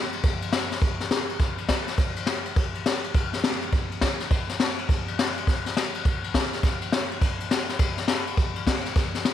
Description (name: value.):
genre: rock.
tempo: 206 BPM.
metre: 4/4.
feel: swing 63% on 8ths.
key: none.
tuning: none.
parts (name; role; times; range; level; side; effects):
jazz brush drum kit; drums; 0.1-9.3 s; kick drum, ride cymbal, snare drum; -23 LUFS; left 1 dB; none.
room: moderate echo chamber reverb, RT60 1.9 s.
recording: 1960s-style stereo.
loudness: -23 LUFS.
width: side -11 dB against mid.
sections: 0.0-9.3 A section.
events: none.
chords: none.